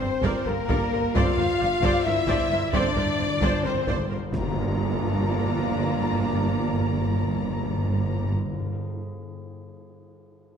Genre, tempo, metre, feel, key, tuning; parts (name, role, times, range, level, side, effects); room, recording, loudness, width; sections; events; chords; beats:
cinematic, epic orchestral film score; 262 BPM (eighths); 7/8; straight; G dorian; A4 = 441 Hz
warm symphonic violin section; melody; 0.0-8.3 s; Bb4 to Bb5; -36 LUFS; left 3 dB
large flute ensemble; second line; 0.0-8.3 s; Bb4 to Bb5; -35 LUFS; left 2 dB
rich studio violin section; second line; 0.0-8.3 s; Bb4 to Bb5; -33 LUFS; left 3 dB
rich symphonic viola section; accompaniment; 0.0-8.3 s; F4 to D5; -33 LUFS; right 1 dB
dark French horn section; sustained chords; 0.0-8.3 s; Bb3 to F4; -28 LUFS; left 2 dB
rich symphonic double bass section; bass; 0.0-8.3 s; G1; -31 LUFS; right 2 dB
warm symphonic cello section; bass; 0.0-8.3 s; G2; -30 LUFS; right 3 dB
taiko ensemble; drums; 0.2-4.4 s; -30 LUFS; equal
warm trombone section; sustained chords; 1.2-8.3 s; D3 to D4; -36 LUFS; right 4 dB
timpani; percussion; 1.2-8.8 s; G2; -31 LUFS; left 1 dB
tam-tam; percussion; 4.3-6.1 s; -40 LUFS; left 2 dB
impact; sound effects; 4.3-5.9 s; -38 LUFS; left 1 dB
wet scoring stage reverb, RT60 2.1 s; -22 LUFS; side -7 dB against mid
0.0-4.3 A section; 4.3-7.5 B section
timpani fill 1.1-4.3; band accent 4.3-4.8; impact 4.3-5.9
0.0 Gm; 1.1 Dm7/G; 4.3 Gm7
0.00 0.23 0.46 0.69 0.92 | 1.15 1.38 1.60 1.83 2.05 2.28 2.50 | 2.73 2.96 3.18 3.41 3.64 3.87 4.10 | 4.34 4.57 4.79 5.02 5.25 5.48 5.71 | 5.94 6.17 6.39 6.62 6.85 7.08 7.31